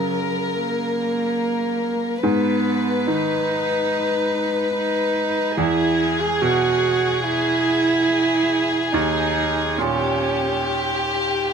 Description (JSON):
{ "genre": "neoclassical piano and strings", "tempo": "72 BPM", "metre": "4/4", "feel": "rubato", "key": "G# minor", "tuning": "A4 = 441 Hz", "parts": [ { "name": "warm chamber violin section", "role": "melody", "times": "0.0-11.5 s", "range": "G4 to B4", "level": "-23 LUFS", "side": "left 4 dB", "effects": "none" }, { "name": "dark cello", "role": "second line", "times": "0.0-11.1 s", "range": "F#3 to G#4", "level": "-22 LUFS", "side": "right 4 dB", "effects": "none" }, { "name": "bright baby grand piano", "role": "accompaniment", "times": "0.0-11.5 s", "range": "D#2 to D#3", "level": "-25 LUFS", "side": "right 1 dB", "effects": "none" } ], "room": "light reverb", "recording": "close, detailed microphones", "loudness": "-18 LUFS", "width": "side -6 dB against mid", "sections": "0.0-11.5 A section", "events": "none", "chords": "0.0 F#; 2.2 G#m; 5.6 E; 8.9 D#7", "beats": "0.58 1.41 | 2.24 3.08 3.91 4.74 | 5.58 6.42 7.25 8.09 | 8.93 9.79 10.64 11.48" }